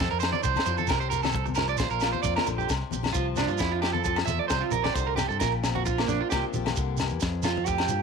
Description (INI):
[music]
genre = highlife guitar band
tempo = 133 BPM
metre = 4/4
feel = swing 55% on 16ths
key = C mixolydian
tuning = A4 = 440 Hz
[part]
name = picked steel-string acoustic guitar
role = accompaniment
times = 0.0-8.0 s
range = F2 to G4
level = -34 LUFS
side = left 14 dB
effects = none
[part]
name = electric guitar at the edge of break-up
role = arpeggios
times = 0.0-8.0 s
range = Bb3 to E5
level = -28 LUFS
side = right 12 dB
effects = tape echo
[part]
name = fingered electric bass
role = bass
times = 0.0-8.0 s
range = Bb1 to G2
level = -31 LUFS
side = equal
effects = none
[part]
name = tight funk drum kit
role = drums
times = 0.0-7.9 s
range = kick drum, snare drum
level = -31 LUFS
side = left 1 dB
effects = none
[part]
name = agogo bells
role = percussion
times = 0.2-7.9 s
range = none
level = -35 LUFS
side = left 16 dB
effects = none
[part]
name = shekere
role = percussion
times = 0.2-8.0 s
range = none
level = -37 LUFS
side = right 8 dB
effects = none
[part]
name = congas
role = percussion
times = 0.3-8.0 s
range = none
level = -36 LUFS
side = left 9 dB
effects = none
[sound]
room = moderate spring reverb, RT60 1.3 s, studio ambience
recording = 1960s-style stereo with parts hard left and right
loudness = -24 LUFS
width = side -5 dB against mid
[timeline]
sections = 0.0-2.7 A section; 2.7-8.0 B section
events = drum fill 2.4-2.7; clean electric guitar solo 2.7-8.0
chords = 0.0 Fmaj7; 0.9 C7sus4; 1.8 Bbadd9; 3.6 Fmaj7; 4.5 C5; 5.4 Bbadd9; 6.3 C7sus4; 7.2 F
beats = 0.00 0.45 | 0.90 1.35 1.80 2.25 | 2.70 3.15 3.61 4.06 | 4.51 4.96 5.42 5.87 | 6.32 6.77 7.22 7.68